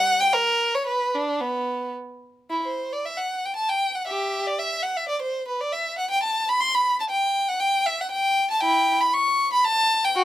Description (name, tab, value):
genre	classical, baroque-style suite movement for unaccompanied violin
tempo	118 BPM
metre	3/4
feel	rubato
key	unclear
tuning	A4 = 440 Hz
part	rich violin	solo	0.0-10.2 s	B3 to C#6	-21 LUFS	equal	none
room	light reverb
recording	none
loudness	-21 LUFS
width	side -13 dB against mid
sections	0.0-2.5 A section; 2.5-10.2 A section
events	none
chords	none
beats	0.32 | 0.85 1.39 1.93 | 2.49 3.03 3.54 | 4.05 4.57 5.08 | 5.59 6.09 6.60 | 7.11 7.60 8.10 | 8.61 9.11 9.62 | 10.13